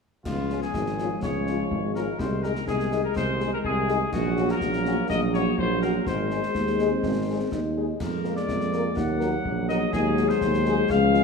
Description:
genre	military-style march for wind band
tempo	124 BPM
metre	2/4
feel	straight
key	Db major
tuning	A4 = 440 Hz
part	mellow trumpet section	melody	0.3-11.2 s	F4 to Gb5	-29 LUFS	left 2 dB	none
part	mellow trombone section	sustained chords	0.3-11.2 s	Eb3 to Bb3	-30 LUFS	left 1 dB	none
part	mellow tuba	bass	0.3-11.2 s	Ab1 to F2	-26 LUFS	right 1 dB	none
part	concert snare drum, clash cymbals and concert bass drum	drums	0.3-11.2 s	none	-34 LUFS	left 3 dB	none
part	mellow French horn section	accompaniment	0.5-11.2 s	Gb3 to Bb4	-32 LUFS	left 7 dB	none
part	dark euphonium	second line	6.5-8.0 s	Ab3 to Eb4	-30 LUFS	right 2 dB	none
room	moderate scoring stage reverb, RT60 1.9 s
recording	none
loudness	-23 LUFS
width	side -5 dB against mid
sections	0.3-11.2 A section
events	none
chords	0.3 Db; 2.2 Ab/C; 4.1 Gb/Bb; 6.1 Ab; 8.0 Bb7/F; 9.0 Ebm; 9.9 Ab7/Eb

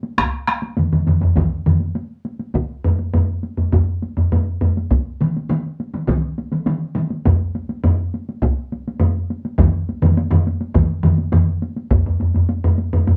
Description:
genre	japanese traditional, taiko drum ensemble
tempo	102 BPM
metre	4/4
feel	straight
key	none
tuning	none
part	solo taiko drums	percussion	0.0-13.2 s	none	-28 LUFS	equal	none
part	solo taiko drums	percussion	0.2-13.2 s	none	-19 LUFS	equal	none
part	taiko ensemble	percussion	0.2-11.5 s	none	-22 LUFS	equal	none
part	taiko ensemble	percussion	0.2-12.0 s	none	-23 LUFS	equal	none
room	wet studio ambience, RT60 0.5 s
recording	band playing live in one room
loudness	-19 LUFS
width	mono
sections	0.0-11.9 A section; 11.9-13.2 B section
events	none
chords	none

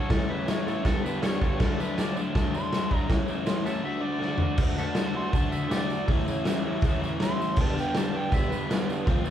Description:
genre	garage rock duo or trio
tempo	161 BPM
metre	4/4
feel	straight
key	unclear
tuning	A4 = 437 Hz
part	overdriven harmonica	melody	0.0-8.7 s	F4 to C6	-34 LUFS	equal	none
part	crunchy overdriven guitar	riff	0.0-9.3 s	G2 to A4	-29 LUFS	equal	none
part	raw garage drum kit	drums	0.1-9.2 s	crash cymbal, hi-hat, kick drum, snare drum, toms	-26 LUFS	equal	none
part	tambourine	percussion	0.5-9.3 s	none	-48 LUFS	right 5 dB	none
room	light reverb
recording	band playing live in one room, cassette tape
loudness	-24 LUFS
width	side -10 dB against mid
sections	0.0-4.6 A section; 4.6-9.3 B section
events	drum fill 4.2-4.6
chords	0.1 A; 0.9 G; 1.6 D; 3.1 A; 3.8 D; 6.1 A; 7.6 G

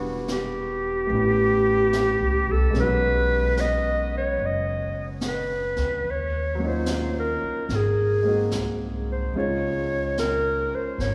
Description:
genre	jazz ballad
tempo	73 BPM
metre	4/4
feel	swing 68% on 8ths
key	unclear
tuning	A4 = 437 Hz
part	breathy clarinet	melody	0.0-11.1 s	Gb4 to D#5	-26 LUFS	equal	none
part	clear concert grand piano	accompaniment	0.0-11.1 s	Gb3 to Gb5	-32 LUFS	equal	none
part	upright bass	bass	0.0-11.1 s	E1 to Eb2	-30 LUFS	equal	none
part	jazz brush drum kit	drums	0.3-11.1 s	brushed snare drum, hi-hat, snare drum	-38 LUFS	equal	none
room	wet church reverb, RT60 3.7 s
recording	recorded in a church or concert hall, small room reverb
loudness	-24 LUFS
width	mono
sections	0.0-11.1 A section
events	none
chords	0.0 Em7; 1.1 A9; 2.8 B69; 6.0 Ebm9; 7.7 Ab9; 9.3 Db

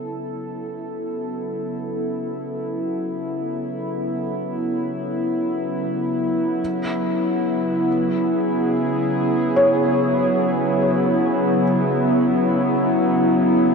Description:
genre	ambient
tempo	free time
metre	none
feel	none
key	unclear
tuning	A4 = 440 Hz
part	warbly tape-like pad	sustained chords	0.0-13.7 s	C#3 to A4	-19 LUFS	equal	chorus, built-in reverb
part	felt-muted upright piano	arpeggios	0.0-13.7 s	C#5	-23 LUFS	left 1 dB	ping-pong delay
room	wet huge ambient reverb, RT60 8.2 s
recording	in a vast, echoing space, cassette tape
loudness	-19 LUFS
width	side -5 dB against mid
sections	0.0-13.7 A section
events	fade-in on ambient pad 0.0-13.7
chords	0.0 Bm7; 6.6 C#m

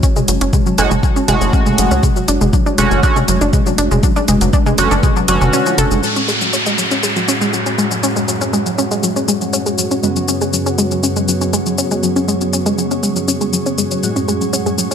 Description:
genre	melodic techno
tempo	120 BPM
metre	4/4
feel	straight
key	F# minor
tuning	A4 = 439 Hz
part	dark analog pad	sustained chords	0.0-14.9 s	F#3 to A5	-23 LUFS	left 1 dB	chorus, sidechain pumping
part	wide unison pluck	arpeggios	0.0-14.9 s	E#3 to A4	-18 LUFS	equal	sidechain pumping, ping-pong delay
part	electronic kick drum	drums	0.0-5.1 s	none	-14 LUFS	equal	none
part	house drum kit	drums	0.0-14.9 s	hi-hat, shaker, toms	-20 LUFS	left 2 dB	overdrive
part	tight sequencer bass	bass	0.3-6.0 s	F#1 to C#2	-18 LUFS	equal	sidechain pumping
part	sync-sweep polysynth	stabs	0.8-14.9 s	F#2 to F#4	-20 LUFS	right 2 dB	chorus, phaser, cassette tape, sidechain pumping, ping-pong delay
part	swarming drone	drone	7.7-14.9 s	F#2 to F#3	-27 LUFS	right 2 dB	built-in reverb, sidechain pumping
part	downlifter	sound effects	6.0-10.0 s	none	-20 LUFS	equal	none
room	light reverb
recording	none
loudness	-13 LUFS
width	side -8 dB against mid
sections	0.0-6.0 A section; 6.0-14.9 B section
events	filter sweep on synth arpeggio sound 0.0-6.0, 6.0-14.9; kick drops out 5.5-6.0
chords	0.0 F#madd9; 2.0 Dmaj7/F#; 6.0 F#madd9; 10.0 C#7sus4/F#; 14.0 F#madd9

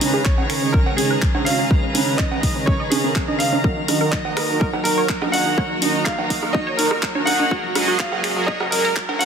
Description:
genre	progressive house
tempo	124 BPM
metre	4/4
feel	straight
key	Eb minor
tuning	A4 = 435 Hz
part	dark studio string section	sustained chords	0.0-9.2 s	Db3 to Db5	-28 LUFS	left 1 dB	sidechain pumping
part	wide unison pluck	arpeggios	0.0-9.2 s	Gb3 to Eb5	-26 LUFS	right 1 dB	sidechain pumping, ping-pong delay
part	soft supersaw	stabs	0.0-9.2 s	Db3 to Eb5	-24 LUFS	right 4 dB	phaser, sidechain pumping, low-pass filter, ping-pong delay
part	house drum kit	drums	0.0-9.2 s	finger snaps, handclaps, hi-hat	-26 LUFS	equal	high-pass filter on hats, soft clipping on snare, high-pass filter on snare, high-pass filter on room
part	electronic congas, cowbell and rim click	percussion	0.0-9.2 s	none	-25 LUFS	right 4 dB	sidechain pumping on perc, soft clipping on snare, sidechain pumping on snare
part	drifting glass-harmonics texture	texture	0.0-9.2 s	Bb5 to Bb6	-31 LUFS	left 4 dB	chorus, built-in reverb, sidechain pumping
part	bright grand piano	melody	0.2-9.2 s	Ab4 to Gb5	-24 LUFS	equal	ping-pong delay
part	electronic kick drum	drums	0.3-9.1 s	none	-21 LUFS	equal	none
room	moderate lush hall reverb, RT60 1.9 s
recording	dense, heavily limited modern master, high-pass filter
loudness	-17 LUFS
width	side -7 dB against mid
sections	0.0-9.2 A section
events	build-up 0.0-9.2; filter sweep on synth pluck 0.0-9.2; filter sweep on supersaw synth 0.0-9.2; filter sweep 0.0-9.2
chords	0.0 Dbsus2; 3.6 Ebm; 7.5 Gbadd9

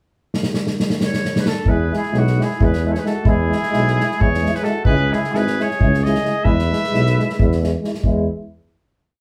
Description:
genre	balkan folk, Balkan brass band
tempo	264 BPM (eighths)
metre	7/8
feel	straight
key	E major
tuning	A4 = 440 Hz
part	unplugged drum kit	percussion	0.3-8.3 s	kick drum, snare drum	-23 LUFS	equal	none
part	clear trumpet	melody	1.1-7.6 s	F#4 to E5	-25 LUFS	equal	none
part	mellow tuba	bass	1.6-8.3 s	G#1 to E2	-22 LUFS	equal	none
part	clear flugelhorn	second line	1.7-7.6 s	B3 to B4	-32 LUFS	equal	none
part	clear French horn	accompaniment	1.7-8.3 s	E4	-31 LUFS	equal	none
part	warm trombone	accompaniment	1.7-8.3 s	G#3	-26 LUFS	equal	none
room	wet studio reverb, RT60 0.6 s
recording	heard from further back in the room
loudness	-18 LUFS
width	mono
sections	0.1-1.7 pickup bar; 1.7-8.0 A section; 8.0-9.2 final chord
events	drum fill 0.3-1.7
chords	0.1 N.C.; 1.7 E; 4.9 C#m; 6.4 E

